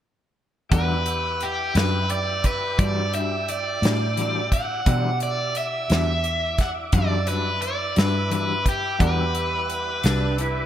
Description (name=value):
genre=slow blues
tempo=58 BPM (dotted quarters)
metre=12/8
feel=straight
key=E minor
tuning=A4 = 440 Hz
part: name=overdriven electric guitar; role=melody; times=0.7-10.7 s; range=G4 to F#5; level=-25 LUFS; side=equal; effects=none
part: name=clear grand piano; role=accompaniment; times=0.7-10.7 s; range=G4 to F#5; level=-36 LUFS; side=right 5 dB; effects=ensemble chorus
part: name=electric guitar at the edge of break-up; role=accompaniment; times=0.7-10.3 s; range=E3 to F#4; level=-31 LUFS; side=left 5 dB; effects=tremolo
part: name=tonewheel organ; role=sustained chords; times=0.7-10.7 s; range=G3 to D5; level=-34 LUFS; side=equal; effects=slow rotary speaker, chorus vibrato
part: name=vintage muted fingered electric bass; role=bass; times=0.7-10.7 s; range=C2 to B2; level=-26 LUFS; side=equal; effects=none
part: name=natural country drum kit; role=drums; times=0.7-10.5 s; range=hi-hat, kick drum, snare drum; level=-23 LUFS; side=equal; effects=none
part: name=clean lap steel guitar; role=second line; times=10.1-10.7 s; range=D4 to E4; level=-28 LUFS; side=right 4 dB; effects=analog chorus
room=moderate plate reverb, RT60 2.6 s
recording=bright 1980s-style digital production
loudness=-20 LUFS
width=side -10 dB against mid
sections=0.7-10.7 A section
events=none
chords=0.7 Em9